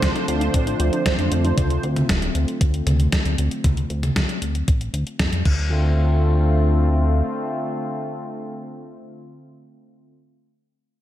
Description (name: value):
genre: synthwave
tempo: 116 BPM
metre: 4/4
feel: straight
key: D minor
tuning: A4 = 440 Hz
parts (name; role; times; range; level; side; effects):
- warm analog pad; sustained chords; 0.0-10.1 s; D3 to F4; -26 LUFS; left 1 dB; chorus, sidechain pumping
- warbly dusty pluck; arpeggios; 0.0-1.5 s; C4 to F4; -30 LUFS; left 2 dB; chorus, cassette tape, tape echo
- mellow synth brass; stabs; 0.0-1.8 s; F3 to C5; -26 LUFS; right 4 dB; chorus, phaser, vintage 12-bit sampler grit, tape echo
- chorused synth bass; bass; 0.0-7.2 s; D1 to F2; -20 LUFS; equal; tube saturation, sidechain pumping
- clean 12-bit digital drum machine; drums; 0.0-5.6 s; crash cymbal, hi-hat, snare drum, toms; -25 LUFS; left 1 dB; overdrive, gated reverb
- electronic kick drum; drums; 0.0-5.6 s; none; -21 LUFS; equal; none
room: light reverb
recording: none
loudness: -18 LUFS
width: side -13 dB against mid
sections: 0.0-5.7 A section; 5.7-9.9 B section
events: filter sweep on analog synth bass 0.0-5.7; filter sweep on analog synth pad 0.0-5.7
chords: 0.0 Dm7